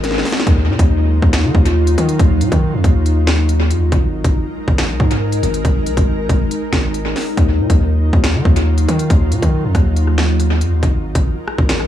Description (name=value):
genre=hip hop, drill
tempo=139 BPM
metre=4/4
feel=half-time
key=Eb minor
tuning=A4 = 440 Hz
part: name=ethereal airy pad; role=sustained chords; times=0.0-11.9 s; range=Gb3 to Bb4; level=-21 LUFS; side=left 1 dB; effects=ensemble chorus, built-in reverb
part: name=distorted 808-style bass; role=bass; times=0.0-11.9 s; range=Ab1 to Eb3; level=-16 LUFS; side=equal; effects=distortion
part: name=drill drum kit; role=drums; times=0.0-11.8 s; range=finger snaps, hi-hat, kick drum, rim click, snare drum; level=-16 LUFS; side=equal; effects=analog delay
room=digital ambience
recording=echo-heavy mix, small room ambience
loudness=-13 LUFS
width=side -11 dB against mid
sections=0.0-11.9 A section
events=drum fill 0.0-0.5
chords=0.5 Ebmadd9; 3.9 Absus2; 7.4 Ebmadd9; 10.8 Absus2